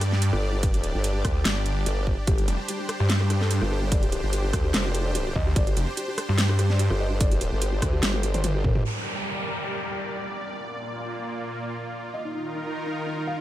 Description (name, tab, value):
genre	heavy wobble dubstep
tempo	146 BPM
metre	4/4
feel	swing 53% on 16ths, half-time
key	G minor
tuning	A4 = 440 Hz
part	supersaw pad	sustained chords	0.0-13.4 s	Bb2 to D5	-32 LUFS	equal	sidechain pumping, low-pass filter
part	snarling distorted saw bass	bass	0.0-6.9 s	F1 to G2	-22 LUFS	equal	distortion, overdrive
part	dubstep drum kit	drums	0.0-8.8 s	hi-hat, rim click, snare drum, toms	-28 LUFS	equal	none
part	formant-sweep wobble bass	bass	0.3-8.8 s	F1 to D2	-26 LUFS	equal	chorus, overdrive
part	electronic kick drum	drums	0.6-8.7 s	none	-24 LUFS	equal	none
part	felt-muted upright piano	melody	2.3-8.8, 12.1-13.4 s	G3 to F5	-33 LUFS	left 1 dB	ping-pong delay
part	downlifter	sound effects	8.8-12.1 s	none	-33 LUFS	equal	none
room	little or no reverb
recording	none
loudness	-23 LUFS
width	side -14 dB against mid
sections	0.0-8.8 A section; 8.8-13.4 B section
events	drop 0.0-8.8; drum fill 8.0-8.8; filter sweep on supersaw synth 8.8-13.4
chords	0.0 G5; 8.8 Gm; 10.5 Bb; 12.1 Ebsus2